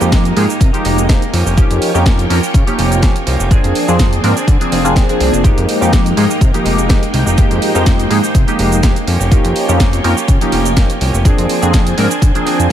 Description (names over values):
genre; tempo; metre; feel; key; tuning
filtered disco house; 124 BPM; 4/4; swing 54% on 16ths; F minor; A4 = 440 Hz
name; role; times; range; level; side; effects
funky polysynth comp; accompaniment; 0.0-12.7 s; F3 to Bb4; -16 LUFS; equal; chorus, phaser, sidechain pumping, low-pass filter
string machine, full ensemble; sustained chords; 0.0-12.7 s; Ab3 to Ab5; -21 LUFS; equal; ensemble chorus, sidechain pumping, low-pass filter
direct-recorded clean electric guitar; riff; 0.0-12.7 s; F3 to Ab4; -22 LUFS; right 4 dB; vintage 12-bit sampler grit, sidechain pumping, low-pass filter
fat analog bass; bass; 0.0-12.7 s; F1 to D3; -16 LUFS; equal; sidechain pumping, low-pass filter
house drum kit; drums; 0.0-12.7 s; hi-hat, shaker, snare drum; -21 LUFS; right 2 dB; none
electronic kick drum; drums; 0.1-12.3 s; none; -12 LUFS; equal; none
room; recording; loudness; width
little or no reverb; none; -10 LUFS; side -10 dB against mid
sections
0.0-12.7 A section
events
none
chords
0.0 Fm11; 1.3 Eb9/F; 3.5 Bb9/F; 5.4 Fm11; 9.1 Eb9/F; 11.3 Bb9/F